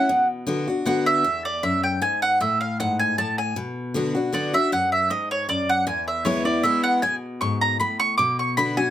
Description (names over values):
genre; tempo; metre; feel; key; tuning
bluegrass; 156 BPM; 3/4; straight; B dorian; A4 = 440 Hz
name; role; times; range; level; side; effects
mandolin; melody; 0.0-8.9 s; C#5 to D6; -21 LUFS; right 1 dB; none
picked steel-string acoustic guitar; accompaniment; 0.0-8.9 s; E2 to F#4; -25 LUFS; left 2 dB; none
room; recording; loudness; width
light reverb; none; -20 LUFS; side -11 dB against mid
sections
0.0-8.9 A section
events
none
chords
0.1 Bm; 1.3 E; 2.4 F#madd9 (rootless); 3.6 Bm; 5.9 E; 8.2 Bm